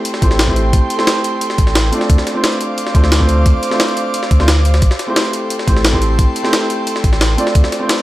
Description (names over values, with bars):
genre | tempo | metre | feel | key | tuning
liquid drum and bass | 176 BPM | 4/4 | straight | A minor | A4 = 439 Hz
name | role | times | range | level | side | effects
warm baby grand piano | accompaniment | 0.0-8.0 s | A3 to D5 | -19 LUFS | right 1 dB | dub echo
airy breathy pad | sustained chords | 0.0-8.0 s | A4 to D6 | -22 LUFS | right 1 dB | chorus
breakbeat sampler-style drum kit | drums | 0.1-8.0 s | hi-hat, snare drum | -19 LUFS | left 1 dB | none
jungle sampler-style drum kit | drums | 0.1-8.0 s | hi-hat, snare drum | -22 LUFS | equal | high-pass filter on hats, high-pass filter on snare, high-pass filter on room
warm sub bass | bass | 0.2-7.6 s | A1 to D2 | -14 LUFS | equal | none
electronic kick drum | drums | 0.2-7.6 s | none | -13 LUFS | equal | none
room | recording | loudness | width
little or no reverb | none | -12 LUFS | side -16 dB against mid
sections
0.0-8.0 A section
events
none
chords
0.0 Am7; 1.9 Dm7; 4.8 Am7; 7.4 Dm7